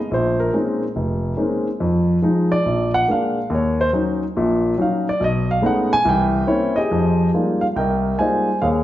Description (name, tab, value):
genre	solo jazz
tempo	141 BPM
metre	4/4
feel	swing 65% on 8ths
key	Bb minor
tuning	A4 = 440 Hz
part	warm grand piano	solo	0.0-8.8 s	F1 to G#5	-17 LUFS	equal	none
room	wet recital hall reverb, RT60 1.4 s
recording	recorded in a church or concert hall, nothing above 7.7 kHz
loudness	-17 LUFS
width	side -13 dB against mid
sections	0.0-6.9 A section; 6.9-8.8 B section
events	grand piano solo 0.0-6.9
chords	0.1 Bbm11; 1.8 Fm7; 2.7 Bb7; 3.5 Ebm7; 5.2 B13; 6.1 C7b9; 6.9 Fm11